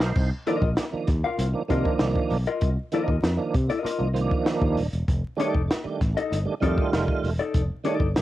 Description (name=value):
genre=funk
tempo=98 BPM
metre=4/4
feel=straight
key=C dorian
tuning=A4 = 440 Hz
part: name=tonewheel organ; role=stabs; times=0.0-8.2 s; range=Eb3 to C5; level=-28 LUFS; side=right 5 dB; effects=overdrive, chorus vibrato, slow rotary speaker, cassette tape
part: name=fingered electric bass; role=bass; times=0.0-8.2 s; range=Eb1 to C3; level=-26 LUFS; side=equal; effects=none
part: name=compact cocktail drum kit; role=drums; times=0.0-8.2 s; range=hi-hat, kick drum, snare drum, splash cymbal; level=-26 LUFS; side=equal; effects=cassette tape
part: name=mellow electric guitar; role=accompaniment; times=0.5-8.1 s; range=Eb4 to F5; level=-27 LUFS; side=left 6 dB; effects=cassette tape
room=light reverb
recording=home recording on cassette, vinyl crackle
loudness=-22 LUFS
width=side -14 dB against mid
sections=0.0-8.2 A section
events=tonewheel organ fill 0.0; drum fill 0.0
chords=0.2 Cm11; 5.1 F13